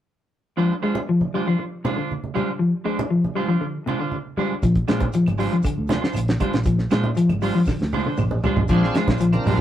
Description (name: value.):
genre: afrobeat.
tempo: 118 BPM.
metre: 4/4.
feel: straight.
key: Bb mixolydian.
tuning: A4 = 436 Hz.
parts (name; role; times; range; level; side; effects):
clean electric guitar; arpeggios; 0.6-9.5 s; C3 to Ab3; -22 LUFS; left 2 dB; spring reverb.
clean electric guitar; stabs; 0.6-9.6 s; Ab3 to C5; -27 LUFS; right 5 dB; none.
congas; percussion; 0.6-9.6 s; none; -29 LUFS; right 3 dB; none.
fingered electric bass; bass; 4.6-9.6 s; Ab1 to Bb2; -25 LUFS; equal; none.
cloth-damped thuddy drum kit; drums; 4.6-9.6 s; hi-hat, kick drum, snare drum, toms; -24 LUFS; right 1 dB; none.
shekere; percussion; 4.6-9.6 s; none; -35 LUFS; right 2 dB; none.
claves; percussion; 4.9-9.5 s; none; -42 LUFS; right 2 dB; none.
overdriven tonewheel organ; accompaniment; 8.7-9.6 s; C4 to Bb4; -26 LUFS; right 1 dB; slow rotary speaker.
room: moderate small room reverb, RT60 0.6 s.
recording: rough rehearsal-room recording, tube saturation.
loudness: -19 LUFS.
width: side -11 dB against mid.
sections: 0.6-8.7 A section.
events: drum fill 7.7-8.7.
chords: 0.6 Bb9.